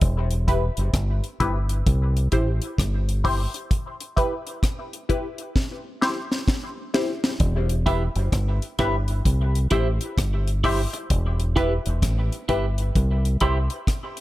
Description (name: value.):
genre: dub reggae.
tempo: 65 BPM.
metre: 4/4.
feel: swing 64% on 16ths.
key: E minor.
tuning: A4 = 442 Hz.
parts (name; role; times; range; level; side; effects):
deep dub fingered electric bass; bass; 0.0-13.7 s; E1 to C2; -22 LUFS; equal; none.
deep reggae drum kit; drums; 0.0-14.2 s; hi-hat, kick drum, rim click, snare drum; -24 LUFS; equal; none.
filtered dub chord stab; stabs; 0.5-13.6 s; E4 to C5; -29 LUFS; left 1 dB; phaser, high-pass filter, dub echo.
clean electric guitar; accompaniment; 7.9-13.6 s; E4 to E5; -29 LUFS; right 3 dB; high-pass filter, dub echo.
room: light reverb, studio reverb.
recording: none.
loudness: -21 LUFS.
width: side -16 dB against mid.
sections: 0.0-7.4 A section; 7.4-14.2 A section.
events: break 0.0-7.4; drum fill 5.6-7.4.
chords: 0.0 Em; 1.9 C; 3.7 Em; 5.6 C; 7.4 Em; 9.3 C; 11.1 Em; 12.9 C.